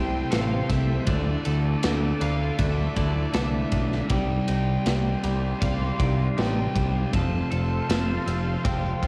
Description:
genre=rock, shoegaze and dream pop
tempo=79 BPM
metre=4/4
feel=straight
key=unclear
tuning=A4 = 438 Hz
part: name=lead guitar through a small cranked amp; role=melody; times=0.0-9.1 s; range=D5 to A5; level=-38 LUFS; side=equal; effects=overdrive, cassette tape, analog delay
part: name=phased analog pad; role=sustained chords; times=0.0-9.1 s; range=G4 to D6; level=-37 LUFS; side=equal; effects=phaser, chorus, cassette tape
part: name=direct-recorded clean electric guitar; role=arpeggios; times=0.0-9.1 s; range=G3 to A4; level=-41 LUFS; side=equal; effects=subtle chorus, cassette tape, analog delay
part: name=clean electric guitar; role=riff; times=0.0-9.1 s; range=C3 to D5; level=-33 LUFS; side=equal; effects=reverse reverb, cassette tape
part: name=thick fuzz guitar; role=riff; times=0.0-9.1 s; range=F2 to D4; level=-34 LUFS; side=equal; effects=distortion, lush chorus, cassette tape
part: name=growling picked electric bass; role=bass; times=0.0-9.1 s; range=F1 to D2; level=-29 LUFS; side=equal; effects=overdrive
part: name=big rock drum kit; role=drums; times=0.3-9.1 s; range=kick drum, ride cymbal, snare drum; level=-31 LUFS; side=equal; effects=none
room=little or no reverb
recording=home recording on cassette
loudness=-25 LUFS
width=mono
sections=0.0-9.1 A section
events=none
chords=0.0 C6; 1.1 Dsus2; 4.1 Cmadd9; 7.1 F

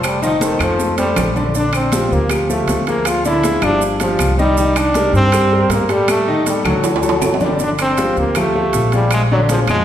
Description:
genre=latin, salsa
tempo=158 BPM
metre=4/4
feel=straight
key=G minor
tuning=A4 = 442 Hz
part: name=bright trombone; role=melody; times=0.0-9.8 s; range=Eb3 to F4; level=-18 LUFS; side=equal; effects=none
part: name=clear upright piano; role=accompaniment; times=0.0-9.8 s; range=D3 to Eb5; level=-18 LUFS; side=left 1 dB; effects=none
part: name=upright bass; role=bass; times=0.0-9.8 s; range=F1 to A2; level=-20 LUFS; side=equal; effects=none
part: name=claves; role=percussion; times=0.0-9.8 s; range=none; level=-30 LUFS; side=left 5 dB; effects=none
part: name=congas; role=percussion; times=0.0-9.8 s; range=none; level=-26 LUFS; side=equal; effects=none
part: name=maracas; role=percussion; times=0.0-9.8 s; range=none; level=-30 LUFS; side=right 6 dB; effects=none
part: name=timbales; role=percussion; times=0.0-9.8 s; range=none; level=-24 LUFS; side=right 4 dB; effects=none
room=wet recital hall reverb, RT60 1.7 s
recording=recorded in a church or concert hall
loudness=-13 LUFS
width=side -10 dB against mid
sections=0.0-7.6 A section; 7.6-9.8 A section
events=drum fill 0.8-1.5, 6.1-7.6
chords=0.0 F7; 1.5 Bb69; 3.1 Ddim; 3.8 Cmadd11/G; 4.6 Cm7; 6.1 Dadd11; 6.8 D; 7.6 Gm9; 9.1 Bb7

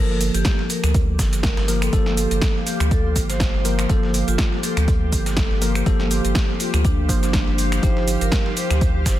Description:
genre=deep house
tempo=122 BPM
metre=4/4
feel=swing 56% on 16ths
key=G minor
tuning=A4 = 440 Hz
part: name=vibraphone with medium mallets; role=melody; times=0.0-8.8 s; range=D4 to C5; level=-30 LUFS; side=equal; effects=digital delay
part: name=bell-like tine electric piano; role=stabs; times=0.0-9.2 s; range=F3 to C5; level=-25 LUFS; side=moving between left 7 dB and right 4 dB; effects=auto-pan, sidechain pumping
part: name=round analog bass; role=bass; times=0.0-9.2 s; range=G1 to D2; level=-22 LUFS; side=equal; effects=sidechain pumping
part: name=granular cloud pad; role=texture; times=1.1-9.2 s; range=G4 to F5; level=-30 LUFS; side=right 1 dB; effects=built-in reverb, sidechain pumping
part: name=dusty soul sampler-style drum kit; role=drums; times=0.1-9.2 s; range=hi-hat, snare drum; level=-36 LUFS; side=right 1 dB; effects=none
part: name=deep house drum kit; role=drums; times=0.2-9.2 s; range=cabasa, finger snaps, hi-hat, snare drum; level=-26 LUFS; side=equal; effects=overdrive
part: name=electronic kick drum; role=drums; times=0.5-9.2 s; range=none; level=-20 LUFS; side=equal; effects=overdrive
room=little or no reverb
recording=dense, heavily limited modern master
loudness=-17 LUFS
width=side -13 dB against mid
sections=0.0-9.2 A section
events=none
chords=0.0 Gm9; 7.8 Ebadd9/G

